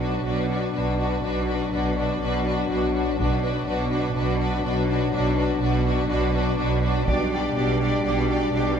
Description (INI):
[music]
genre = cinematic, epic orchestral film score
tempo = 123 BPM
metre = 4/4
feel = straight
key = B minor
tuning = A4 = 443 Hz
[part]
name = warm studio violin section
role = melody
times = 0.0-8.8 s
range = B4 to D5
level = -33 LUFS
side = left 4 dB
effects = none
[part]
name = warm symphonic violin section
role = second line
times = 0.0-8.8 s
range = F#4 to G4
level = -32 LUFS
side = left 4 dB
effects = none
[part]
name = rich symphonic viola section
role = accompaniment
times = 0.0-8.8 s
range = D4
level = -29 LUFS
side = right 1 dB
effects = none
[part]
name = mellow French horn section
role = sustained chords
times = 0.0-8.8 s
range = F#3 to D4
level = -27 LUFS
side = left 5 dB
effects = none
[part]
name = rich symphonic cello section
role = bass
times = 0.0-8.8 s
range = B2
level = -28 LUFS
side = right 3 dB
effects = none
[part]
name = warm symphonic double bass section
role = bass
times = 0.0-8.8 s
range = B1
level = -27 LUFS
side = right 3 dB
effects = none
[part]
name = taiko ensemble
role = drums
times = 3.2-4.1, 7.1-8.0 s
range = none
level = -28 LUFS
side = equal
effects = none
[sound]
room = moderate scoring stage reverb, RT60 1.8 s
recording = none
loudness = -21 LUFS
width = side -7 dB against mid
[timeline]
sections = 0.0-8.8 A section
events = build-up 0.0-8.8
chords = 0.0 Bm; 7.1 G/B